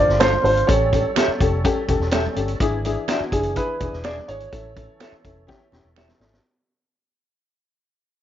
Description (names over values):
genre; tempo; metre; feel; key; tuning
uptempo 1960s-style soul; 125 BPM; 4/4; straight; unclear; A4 = 440 Hz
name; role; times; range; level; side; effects
dark concert grand piano; melody; 0.0-5.9 s; G#4 to D5; -21 LUFS; right 1 dB; plate reverb
dark upright piano; accompaniment; 0.0-6.4 s; C#4 to C5; -25 LUFS; left 5 dB; plate reverb
percussive tonewheel organ; sustained chords; 0.0-6.4 s; D3 to A4; -33 LUFS; right 1 dB; overdrive, chorus vibrato, slow rotary speaker, plate reverb
vintage muted fingered electric bass; bass; 0.0-6.4 s; E1 to A1; -25 LUFS; equal; none
vintage drum kit; drums; 0.1-6.4 s; hi-hat, kick drum, snare drum; -24 LUFS; equal; none
electric guitar through a small old amp; stabs; 0.2-6.1 s; G4 to F5; -26 LUFS; right 2 dB; plate reverb
congas; percussion; 0.2-6.2 s; none; -36 LUFS; right 12 dB; none
finger snap; percussion; 0.2-6.1 s; none; -30 LUFS; right 13 dB; none
room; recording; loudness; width
light reverb; nothing above 7.5 kHz; -18 LUFS; side -11 dB against mid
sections
0.0-6.4 A section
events
fade-out 0.0-6.4; drum fill 5.5-6.4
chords
0.0 Dm7; 0.7 A7; 2.6 E7; 4.5 A